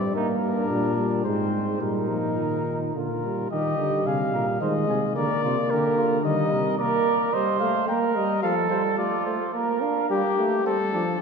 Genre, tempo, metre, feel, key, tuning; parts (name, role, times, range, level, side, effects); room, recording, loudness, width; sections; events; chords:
classical, imitative canzona for brass ensemble; 109 BPM; 3/4; straight; Eb major; A4 = 440 Hz
mellow trumpet; melody; 0.0-11.2 s; G4 to G5; -27 LUFS; left 5 dB
warm flugelhorn; second line; 0.0-11.1 s; Bb3 to C5; -28 LUFS; right 6 dB
mellow trombone; accompaniment; 0.0-11.2 s; D3 to D4; -27 LUFS; right 1 dB
mellow bass trombone; bass; 0.0-6.8 s; G2 to Eb3; -28 LUFS; left 1 dB
wet church reverb, RT60 3.4 s; minimal, uncompressed stereo recording; -22 LUFS; side -5 dB against mid
0.0-3.5 A section; 3.5-10.1 B section; 10.1-11.2 C section
0.2 Eb/G (rootless); 1.3 Ab; 1.8 Bbsus4; 3.0 Bb; 3.5 Eb; 4.6 Ab/Eb; 5.2 Bb; 6.3 Eb; 6.8 Bb; 7.9 Eb/Bb; 8.4 F; 9.5 Bb; 10.1 Gm